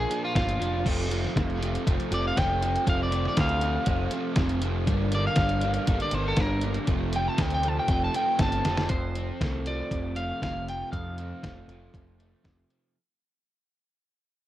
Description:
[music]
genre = indie rock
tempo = 119 BPM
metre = 4/4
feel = straight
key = F major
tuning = A4 = 442 Hz
[part]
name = electric guitar at the edge of break-up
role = melody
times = 0.0-12.4 s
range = F4 to A5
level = -30 LUFS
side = equal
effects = none
[part]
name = crunchy overdriven guitar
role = riff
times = 0.0-12.9 s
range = F2 to D4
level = -31 LUFS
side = right 1 dB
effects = none
[part]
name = growling picked electric bass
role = bass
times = 0.0-12.6 s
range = F1 to F2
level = -30 LUFS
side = equal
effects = overdrive
[part]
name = detuned 8-bit digital drum machine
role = drums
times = 0.1-12.8 s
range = crash cymbal, hi-hat, kick drum, snare drum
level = -28 LUFS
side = equal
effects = overdrive
[sound]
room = light reverb, digital ambience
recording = worn, warbling old tape, cassette tape, warbly pitch drift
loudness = -24 LUFS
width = side -13 dB against mid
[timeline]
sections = 0.0-8.9 A section; 8.9-12.9 B section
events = clean electric guitar solo 0.0-8.9; drum fill 8.6; fade-out 8.9-12.9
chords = 0.0 Bb; 0.9 F; 4.9 Gm; 6.9 F

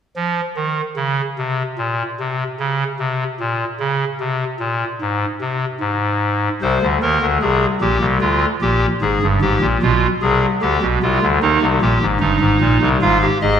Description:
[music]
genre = classical, baroque-style 3-part fugue for pipe organ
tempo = 75 BPM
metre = 4/4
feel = straight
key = unclear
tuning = A4 = 438 Hz
[part]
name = chamber organ, clarinet reed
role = solo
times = 0.2-13.6 s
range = G1 to F5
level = -15 LUFS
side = equal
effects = none
[sound]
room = wet recital hall reverb, RT60 1.7 s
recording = none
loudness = -15 LUFS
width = side -8 dB against mid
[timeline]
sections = 0.2-13.6 A section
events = none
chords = 0.2 N.C.; 6.6 Cm; 8.2 Ddim; 9.8 G7/B; 11.4 Cm; 13.0 Fm/Ab

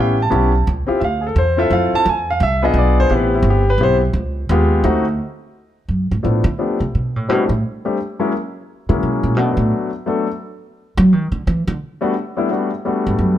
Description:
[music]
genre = jazz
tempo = 172 BPM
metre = 3/4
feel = swing 63% on 8ths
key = G major from 5.2 s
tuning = A4 = 444 Hz
[part]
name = clear concert grand piano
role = melody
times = 0.0-13.4 s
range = F3 to A5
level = -17 LUFS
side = left 2 dB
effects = none
[part]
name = upright bass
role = bass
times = 0.0-13.4 s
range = G1 to F#3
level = -17 LUFS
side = right 1 dB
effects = none
[sound]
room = moderate large studio reverb, RT60 1.3 s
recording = dark, warm production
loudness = -15 LUFS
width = side -12 dB against mid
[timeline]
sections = 0.0-5.2 A section; 5.2-13.4 A section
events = grand piano solo 0.0-5.2; upright bass solo 5.2-13.4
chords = 0.0 A7; 1.0 Dm9; 2.1 E7b9; 3.1 Am9; 4.1 Db7#11; 4.8 D7b9; 5.2 F#sus2; 6.2 G9 (rootless); 7.3 C6; 8.3 F#7; 9.4 Bm7; 10.4 D; 11.5 Gmaj9

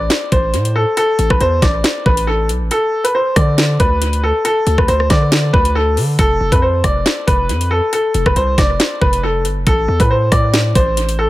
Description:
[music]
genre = hip hop, drill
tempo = 138 BPM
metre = 4/4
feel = half-time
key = A minor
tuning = A4 = 440 Hz
[part]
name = clear upright piano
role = melody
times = 0.0-11.3 s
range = A4 to D5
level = -16 LUFS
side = equal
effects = analog delay
[part]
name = distorted 808-style bass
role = bass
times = 0.0-11.3 s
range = F1 to D3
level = -17 LUFS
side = equal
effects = distortion
[part]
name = drill drum kit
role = drums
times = 0.1-11.2 s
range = hi-hat, kick drum, rim click, snare drum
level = -16 LUFS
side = equal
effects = analog delay
[sound]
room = light reverb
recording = echo-heavy mix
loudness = -12 LUFS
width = side -16 dB against mid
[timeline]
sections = 0.0-11.3 A section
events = kick muted 2.7-3.1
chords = 0.0 Am; 2.7 Bm7/D; 6.2 N.C.; 9.7 Am

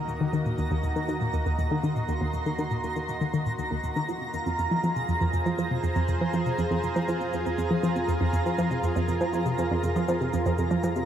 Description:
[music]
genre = ambient, sequencer-driven space music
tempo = 120 BPM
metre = 4/4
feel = straight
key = unclear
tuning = A4 = 440 Hz
[part]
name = lush unison pad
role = sustained chords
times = 0.0-11.1 s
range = Eb3 to C6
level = -32 LUFS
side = equal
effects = chorus, shimmer reverb
[part]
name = analog drone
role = bass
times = 0.1-11.1 s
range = Eb2 to F2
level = -40 LUFS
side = equal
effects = none
[part]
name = twinkling granular texture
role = texture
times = 0.0-11.1 s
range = Bb5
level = -33 LUFS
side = right 2 dB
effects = built-in reverb, shimmer reverb
[part]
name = analog pluck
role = riff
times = 0.1-11.0 s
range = Eb2 to F3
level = -26 LUFS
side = equal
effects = chorus, tape echo
[part]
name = shaker and bongos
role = percussion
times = 0.1-11.1 s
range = none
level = -52 LUFS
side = left 1 dB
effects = tape echo
[sound]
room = wet huge ambient reverb, RT60 7.6 s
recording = none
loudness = -24 LUFS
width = side -10 dB against mid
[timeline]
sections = 0.0-11.1 A section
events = fade-in on analog synth pad 0.0-11.1; fade-in on drum 0.0-11.1; filter sweep on synth arpeggio sound 0.0-11.1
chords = 0.0 Ebm; 4.1 Fm

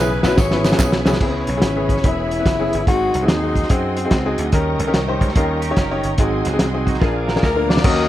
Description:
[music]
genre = uptempo gospel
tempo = 145 BPM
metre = 4/4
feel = swing 66% on 8ths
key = unclear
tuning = A4 = 439 Hz
[part]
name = clear saxophone section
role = melody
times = 0.0-1.2, 7.4-8.1 s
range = E4 to Eb5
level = -22 LUFS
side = left 4 dB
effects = none
[part]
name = bright upright piano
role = accompaniment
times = 0.0-8.1 s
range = G#2 to C#5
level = -21 LUFS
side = left 1 dB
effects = none
[part]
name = bright tonewheel organ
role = sustained chords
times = 0.0-8.1 s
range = E3 to A#4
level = -29 LUFS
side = right 3 dB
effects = slow rotary speaker, chorus vibrato
[part]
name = dry thumbed slap bass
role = bass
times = 0.0-8.1 s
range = E1 to F#2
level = -23 LUFS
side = equal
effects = none
[part]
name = warm soul drum kit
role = drums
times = 0.2-8.0 s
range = crash cymbal, hi-hat, kick drum, snare drum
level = -18 LUFS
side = equal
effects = none
[part]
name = tambourine and handclaps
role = percussion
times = 0.2-1.1 s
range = none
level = -30 LUFS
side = right 4 dB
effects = none
[part]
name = breathy tenor saxophone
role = melody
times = 1.2-4.4 s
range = B#3 to F#4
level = -22 LUFS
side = left 3 dB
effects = none
[part]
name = muted studio string section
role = sustained chords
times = 1.2-7.8 s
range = C#5 to C#6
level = -32 LUFS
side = equal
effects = none
[part]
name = clean electric guitar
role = second line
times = 5.4-7.8 s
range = C#4 to A#4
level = -31 LUFS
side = right 6 dB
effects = analog chorus
[sound]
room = light reverb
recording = none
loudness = -15 LUFS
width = side -13 dB against mid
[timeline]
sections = 0.0-1.2 A section; 1.2-7.8 B section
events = drum fill 0.0-1.2, 7.0-7.8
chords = 0.0 C#m7; 2.9 G#7; 4.5 D#7; 6.2 G#7; 7.0 A#7

